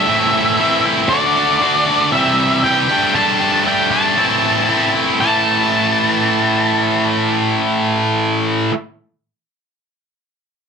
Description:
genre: rock.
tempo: 117 BPM.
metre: 4/4.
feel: straight.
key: A dorian.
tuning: A4 = 440 Hz.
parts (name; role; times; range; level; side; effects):
octave-fuzz lead guitar; melody; 0.0-8.2 s; D5 to A5; -17 LUFS; equal; distortion, slapback echo.
high-gain distorted guitar; riff; 0.0-8.7 s; A2 to G4; -15 LUFS; equal; distortion.
room: moderate small room reverb, RT60 0.5 s.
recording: none.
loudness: -13 LUFS.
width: side -6 dB against mid.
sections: 0.0-5.2 A section; 5.2-9.3 B section.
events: none.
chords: 0.1 Am; 1.1 D; 2.1 C; 2.9 Gsus2; 4.2 Am; 5.2 A5.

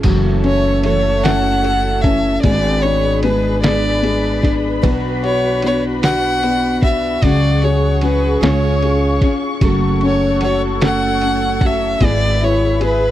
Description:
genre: six-eight pop ballad.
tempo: 50 BPM (dotted quarters).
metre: 6/8.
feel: straight.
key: F# minor.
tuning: A4 = 444 Hz.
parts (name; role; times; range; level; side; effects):
dark upright piano; accompaniment; 0.0-13.1 s; C#3 to A4; -20 LUFS; left 6 dB; none.
muted studio string section; sustained chords; 0.0-13.1 s; D4 to C#6; -25 LUFS; left 1 dB; none.
picked steel-string acoustic guitar; arpeggios; 0.0-13.1 s; F#2 to A4; -22 LUFS; right 6 dB; none.
upright bass; bass; 0.0-13.1 s; F#1 to C#2; -19 LUFS; equal; none.
lo-fi sampler-style drum kit; drums; 0.0-13.0 s; crash cymbal, kick drum, ride cymbal, snare drum; -17 LUFS; equal; none.
rich violin; melody; 0.5-13.1 s; B4 to F#5; -18 LUFS; equal; none.
room: little or no reverb.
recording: dry, close 1970s-style studio recording.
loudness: -13 LUFS.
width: side -13 dB against mid.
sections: 0.0-13.1 A section.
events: none.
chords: 0.0 F#m7; 2.4 G#dim; 4.8 Bm; 7.2 C#sus4; 8.4 C#; 9.6 F#m; 12.0 E/G#.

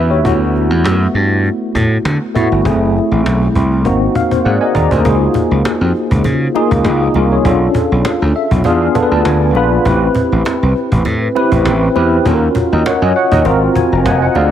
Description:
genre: polished 1980s jazz-funk pop.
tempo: 100 BPM.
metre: 4/4.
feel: swing 54% on 16ths.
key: unclear.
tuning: A4 = 440 Hz.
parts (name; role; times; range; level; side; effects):
tine electric piano; accompaniment; 0.0-14.5 s; A3 to B5; -13 LUFS; equal; fast stereo tremolo, analog chorus.
gritty slap bass; bass; 0.0-14.5 s; E#1 to D3; -14 LUFS; equal; overdrive.
cajon; drums; 0.1-14.4 s; none; -20 LUFS; equal; none.
congas; percussion; 5.0-14.5 s; none; -29 LUFS; right 8 dB; none.
room: light reverb, studio ambience.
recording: none.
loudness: -11 LUFS.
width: side -10 dB against mid.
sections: 0.0-5.1 A section; 5.1-14.5 B section.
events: tine electric piano fill 0.0, 3.9-5.1, 8.1-9.9, 13.5-14.5; drum fill 4.5-5.1.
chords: 0.2 D6; 2.7 F#m7b5; 3.9 G#7; 5.1 C#6; 7.5 Bm7b5; 8.7 E7b9; 9.9 Am9; 12.3 D#m7; 13.5 G#13.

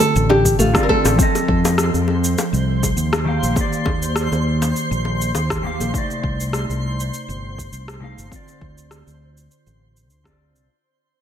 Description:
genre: sunset chillout.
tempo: 101 BPM.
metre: 4/4.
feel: swing 54% on 16ths.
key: unclear.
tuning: A4 = 441 Hz.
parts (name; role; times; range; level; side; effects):
nylon-string guitar; melody; 0.0-1.7 s; F4 to Bb4; -19 LUFS; equal; digital delay.
mellow electric guitar; accompaniment; 0.0-10.7 s; C3 to F5; -24 LUFS; equal; auto-pan, low-pass filter, tape echo.
soft round pluck; arpeggios; 0.0-1.0 s; A3 to D4; -23 LUFS; right 2 dB; chorus, cassette tape, tape echo.
electronic cabasa and rim click; drums; 0.0-10.7 s; none; -24 LUFS; equal; overdrive.
bongos; percussion; 0.0-5.9 s; none; -26 LUFS; left 5 dB; none.
fretless electric bass; bass; 0.2-10.7 s; G1 to F2; -21 LUFS; equal; none.
electronic kick drum; drums; 0.5-10.4 s; none; -22 LUFS; equal; overdrive.
twinkling granular texture; texture; 1.6-10.7 s; C5 to C6; -29 LUFS; left 1 dB; built-in reverb.
room: light reverb.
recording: none.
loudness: -16 LUFS.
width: side -9 dB against mid.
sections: 0.0-1.2 A section; 1.2-10.7 B section.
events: fade-out 1.2-10.7; filter sweep on clean electric guitar 1.2-10.7.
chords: 0.0 Dm7; 1.2 F7; 3.3 Ebmaj7; 5.9 Cm69; 8.3 Dm7.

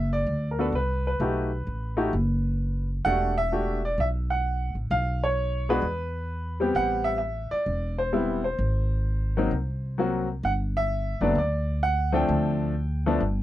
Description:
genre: jazz piano trio.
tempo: 130 BPM.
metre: 4/4.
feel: swing 67% on 8ths.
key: G major.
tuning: A4 = 441 Hz.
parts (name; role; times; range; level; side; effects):
bright upright piano; melody; 0.0-13.4 s; F3 to G5; -26 LUFS; equal; none.
upright bass; bass; 0.0-13.4 s; E1 to E2; -27 LUFS; equal; none.
room: little or no reverb.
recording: dry, close 1970s-style studio recording.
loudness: -24 LUFS.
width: side -14 dB against mid.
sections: 0.0-13.4 A section.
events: none.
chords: 0.0 Gmaj7 (rootless); 1.2 B7b13; 3.1 Em11; 4.9 N.C.; 5.8 E5; 6.7 Am9; 8.6 Ab9; 10.4 Gmaj7(no3); 12.3 Dm7.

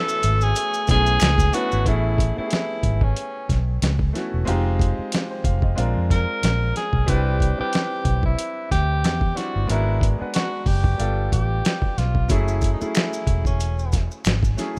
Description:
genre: R&B, neo-soul.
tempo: 92 BPM.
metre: 4/4.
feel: swing 57% on 16ths.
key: A major.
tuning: A4 = 440 Hz.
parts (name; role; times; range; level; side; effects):
breathy tenor saxophone; melody; 0.0-14.1 s; C#4 to Bb4; -28 LUFS; equal; none.
clear grand piano; accompaniment; 0.0-14.8 s; F#3 to G#5; -31 LUFS; equal; none.
phased string machine; sustained chords; 0.0-1.8 s; A3 to C#6; -43 LUFS; equal; none.
warm horn section; stabs; 0.0-1.5 s; A3 to E4; -42 LUFS; equal; none.
maracas and finger snaps; percussion; 0.1-1.8, 12.3-14.8 s; none; -38 LUFS; equal; none.
vintage muted fingered electric bass; bass; 0.2-14.5 s; E1 to F2; -24 LUFS; equal; none.
dusty soul sampler-style drum kit; drums; 0.2-14.8 s; hi-hat, kick drum, snare drum; -25 LUFS; equal; none.
room: small room ambience.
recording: rough home demo mix.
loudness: -21 LUFS.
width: mono.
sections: 0.0-1.9 A section; 1.9-14.8 B section.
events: none.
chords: 0.0 Amaj7; 4.5 Fm7; 5.8 Bb9; 7.1 Cmaj7; 9.7 G#m7b5; 11.0 G9; 12.3 F#m7.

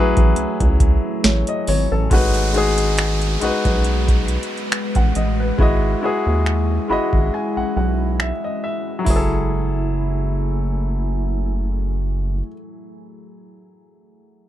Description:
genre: contemporary R&B.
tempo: 69 BPM.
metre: 4/4.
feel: swing 54% on 16ths.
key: F# dorian.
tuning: A4 = 440 Hz.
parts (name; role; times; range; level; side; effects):
warm baby grand piano; accompaniment; 0.0-14.5 s; F#3 to B5; -22 LUFS; left 3 dB; none.
deep dark ambient pad; sustained chords; 0.0-12.4 s; F#3 to G#5; -28 LUFS; right 1 dB; chorus, built-in reverb.
rubbery square bass; bass; 0.0-12.4 s; F#1 to D#2; -20 LUFS; equal; none.
booming analog drum machine; drums; 0.2-9.3 s; finger snaps, hi-hat, kick drum, snare drum; -17 LUFS; equal; overdrive, vintage 12-bit sampler grit.
celesta; texture; 1.2-2.5 s; C#5; -32 LUFS; right 2 dB; ping-pong delay.
downlifter; sound effects; 2.1-9.1 s; none; -30 LUFS; right 2 dB; none.
room: little or no reverb.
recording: none.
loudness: -17 LUFS.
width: side -12 dB against mid.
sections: 0.0-2.1 A section; 2.1-9.1 B section; 9.1-12.5 C section.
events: grand piano fill 6.5-9.1; break 7.3-9.1.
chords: 0.0 F#m11; 2.1 G#m7; 5.6 Emaj7/G#; 9.1 F#m9.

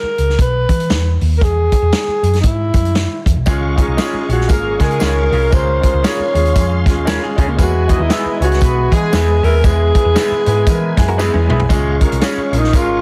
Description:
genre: uptempo 1960s-style soul.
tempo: 117 BPM.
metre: 4/4.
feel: swing 60% on 8ths.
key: Db major.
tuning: A4 = 441 Hz.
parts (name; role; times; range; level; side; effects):
breathy tenor saxophone; melody; 0.0-13.0 s; Db4 to Db5; -20 LUFS; equal; none.
hollow-body short-scale picked electric bass; bass; 0.0-13.0 s; Ab1 to E3; -19 LUFS; equal; none.
vintage drum kit; drums; 0.2-12.9 s; hi-hat, kick drum, snare drum, toms; -19 LUFS; equal; none.
warm grand piano; accompaniment; 3.5-13.0 s; Ab3 to B5; -23 LUFS; equal; none.
bright tonewheel organ; sustained chords; 3.5-13.0 s; Ab4 to Db6; -31 LUFS; equal; slow rotary speaker, overdrive, chorus vibrato.
tambourine; percussion; 3.5-12.9 s; none; -39 LUFS; equal; none.
warm horn section; second line; 3.8-9.4 s; Ab3 to Eb5; -27 LUFS; equal; none.
electric guitar through a small old amp; stabs; 4.0-12.4 s; Ab4 to F5; -29 LUFS; equal; subtle chorus, tape echo.
vintage hollow-body jazz guitar; riff; 7.1-7.7, 11.1-11.7 s; Bb3 to Bb4; -28 LUFS; equal; none.
room: little or no reverb.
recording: heavily compressed radio sound, multiband compression.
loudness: -15 LUFS.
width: mono.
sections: 0.0-11.7 A section; 11.7-13.0 B section.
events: grand piano fill 10.2-11.7; drum fill 11.2-11.7; tenor saxophone solo 11.7-13.0.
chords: 0.0 E; 3.5 Db; 7.6 E; 11.7 Db.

